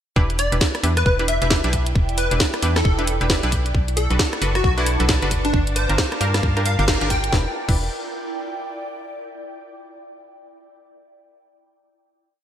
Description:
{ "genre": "UK garage, two-step garage", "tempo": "134 BPM", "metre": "4/4", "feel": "swing 61% on 16ths", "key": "E minor", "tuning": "A4 = 440 Hz", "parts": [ { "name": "punchy chord stab", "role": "stabs", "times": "0.2-7.8 s", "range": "D4 to B4", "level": "-26 LUFS", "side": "equal", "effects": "chorus" }, { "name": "organ-like FM bass", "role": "bass", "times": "0.2-7.9 s", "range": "E1 to G2", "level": "-22 LUFS", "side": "equal", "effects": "none" }, { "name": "electronic kick drum", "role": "drums", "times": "0.2-7.8 s", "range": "none", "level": "-21 LUFS", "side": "equal", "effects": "none" }, { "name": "ethereal airy pad", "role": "texture", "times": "0.9-9.1 s", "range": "D4 to A5", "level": "-32 LUFS", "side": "right 1 dB", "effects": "ensemble chorus, built-in reverb, phaser, sidechain pumping" }, { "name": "garage drum kit", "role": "drums", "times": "0.3-7.8 s", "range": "crash cymbal, hi-hat, rim click, snare drum", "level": "-24 LUFS", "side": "equal", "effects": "gated reverb" }, { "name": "plucky unison lead", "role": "melody", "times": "0.4-7.3 s", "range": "D4 to G5", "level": "-25 LUFS", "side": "left 1 dB", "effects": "ensemble chorus, digital delay" }, { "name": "soft string machine", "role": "sustained chords", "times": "3.7-7.5 s", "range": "Bb4 to C#6", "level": "-32 LUFS", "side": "equal", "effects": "ensemble chorus, sidechain pumping" } ], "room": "light reverb", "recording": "bright 1980s-style digital production", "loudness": "-18 LUFS", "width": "side -10 dB against mid", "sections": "0.2-7.3 drop; 7.3-9.1 final chord", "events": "drop 0.2-7.3; band accent 6.9", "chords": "0.2 Em7; 3.7 Bm7; 5.5 Gm7; 7.3 Em7", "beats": "| 0.16 0.61 1.06 1.50 | 1.95 2.40 2.85 3.30 | 3.74 4.19 4.64 5.09 | 5.54 5.98 6.43 6.88 | 7.33 7.77 8.22 8.67" }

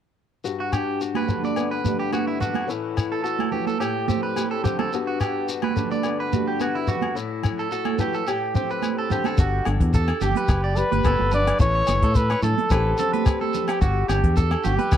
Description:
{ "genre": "highlife guitar band", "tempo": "108 BPM", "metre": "4/4", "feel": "straight", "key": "G major", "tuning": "A4 = 440 Hz", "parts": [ { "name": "fingerpicked swing-style acoustic guitar", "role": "accompaniment", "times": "0.4-15.0 s", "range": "G2 to G4", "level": "-28 LUFS", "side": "left 9 dB", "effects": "none" }, { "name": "shekere", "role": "percussion", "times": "0.5-15.0 s", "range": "none", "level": "-26 LUFS", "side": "left 2 dB", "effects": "none" }, { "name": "electric guitar at the edge of break-up", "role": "arpeggios", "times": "0.6-15.0 s", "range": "E4 to D5", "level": "-27 LUFS", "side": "right 5 dB", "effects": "spring reverb, tape echo" }, { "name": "agogo bells", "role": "percussion", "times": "0.7-15.0 s", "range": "none", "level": "-35 LUFS", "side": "left 6 dB", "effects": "none" }, { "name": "congas", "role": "percussion", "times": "1.1-14.9 s", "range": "none", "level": "-28 LUFS", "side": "right 17 dB", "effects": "none" }, { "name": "fingered electric bass", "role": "bass", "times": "9.4-15.0 s", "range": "F#1 to A2", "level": "-22 LUFS", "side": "left 1 dB", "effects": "none" }, { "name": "compact cocktail drum kit", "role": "drums", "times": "9.4-15.0 s", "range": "hi-hat, kick drum, rim click", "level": "-22 LUFS", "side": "equal", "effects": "none" }, { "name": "mellow trumpet", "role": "melody", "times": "10.2-15.0 s", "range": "G4 to D5", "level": "-23 LUFS", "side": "left 1 dB", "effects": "none" } ], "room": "little or no reverb", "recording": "dry, close 1970s-style studio recording", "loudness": "-20 LUFS", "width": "side -10 dB against mid", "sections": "0.5-9.4 A section; 9.4-15.0 B section", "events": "none", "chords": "0.5 Gmaj7; 2.7 A; 3.8 D7sus4/A; 4.9 Gmaj7; 7.2 A; 8.3 D7sus4/A; 9.4 Gmaj7; 11.6 A; 12.7 D7sus4/A; 13.8 Gmaj7", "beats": "| 0.45 1.01 1.57 2.13 | 2.69 3.25 3.81 4.37 | 4.93 5.49 6.04 6.60 | 7.16 7.72 8.27 8.83 | 9.38 9.94 10.49 11.05 | 11.60 12.16 12.71 13.26 | 13.82 14.37 14.92" }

